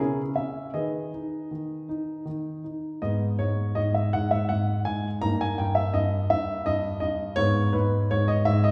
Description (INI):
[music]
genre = classical-period piano sonatina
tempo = 81 BPM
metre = 3/4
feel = uneven beats, rubato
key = G# minor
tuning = A4 = 438 Hz
[part]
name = warm grand piano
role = solo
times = 0.0-8.7 s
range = G2 to A#5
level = -26 LUFS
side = equal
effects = none
[sound]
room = wet recital hall reverb, RT60 1.7 s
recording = heard from further back in the room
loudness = -27 LUFS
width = mono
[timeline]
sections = 0.0-3.0 A section; 3.0-8.7 B section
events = none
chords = 0.0 C#m; 0.7 G#m/D#; 2.3 N.C.; 3.0 G#m; 5.2 D#/G; 7.4 G#m